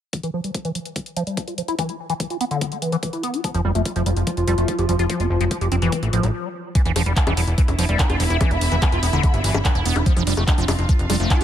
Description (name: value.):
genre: psychedelic trance.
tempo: 145 BPM.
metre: 4/4.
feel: straight.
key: E phrygian.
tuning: A4 = 440 Hz.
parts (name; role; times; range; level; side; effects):
liquid acid bass; riff; 0.1-11.4 s; D3 to G4; -25 LUFS; moving between left 3 dB and right 4 dB; phaser, auto-pan, sidechain pumping, ping-pong delay.
drum and bass drum kit; drums; 0.1-11.4 s; bongos, handclaps, hi-hat; -27 LUFS; left 2 dB; none.
electronic kick drum; drums; 0.1-11.4 s; none; -19 LUFS; equal; overdrive, high-pass filter on kick.
pulsing gated texture; sustained chords; 3.4-11.4 s; F3 to F4; -28 LUFS; right 1 dB; chorus, built-in reverb, sidechain pumping.
plucky analog bass; bass; 3.5-11.4 s; E1 to A1; -21 LUFS; equal; tube saturation.
bright symphonic string section; texture; 6.8-11.4 s; B3 to B5; -28 LUFS; right 1 dB; sidechain pumping.
room: light reverb, digital ambience.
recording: none.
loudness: -18 LUFS.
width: side -10 dB against mid.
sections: 0.1-6.8 A section; 6.8-11.4 B section.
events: filter sweep on acid bass 0.1-6.8; stop 6.3-6.8.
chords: 0.1 E5; 3.4 F5; 6.8 E5; 10.1 F5.